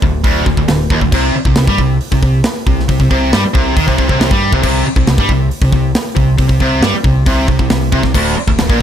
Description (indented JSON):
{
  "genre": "heavy metal",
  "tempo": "136 BPM",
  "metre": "4/4",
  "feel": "straight",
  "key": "unclear",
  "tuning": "A4 = 442 Hz",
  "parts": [
    { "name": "high-gain distorted guitar", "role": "riff", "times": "0.0-8.8 s", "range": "D2 to G3", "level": "-13 LUFS", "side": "equal", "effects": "distortion" },
    { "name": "overdriven picked electric bass", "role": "bass", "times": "0.0-8.8 s", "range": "D1 to G2", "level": "-17 LUFS", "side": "equal", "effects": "none" },
    { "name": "tight metal drum kit", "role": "drums", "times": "0.0-8.8 s", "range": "crash cymbal, hi-hat, kick drum, snare drum", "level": "-15 LUFS", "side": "equal", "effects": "none" }
  ],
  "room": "studio ambience",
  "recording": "dark, warm production",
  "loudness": "-10 LUFS",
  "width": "side -9 dB against mid",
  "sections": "0.0-8.8 A section",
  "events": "none",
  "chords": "0.0 Bbadd11/D (rootless); 1.1 C5; 8.2 N.C."
}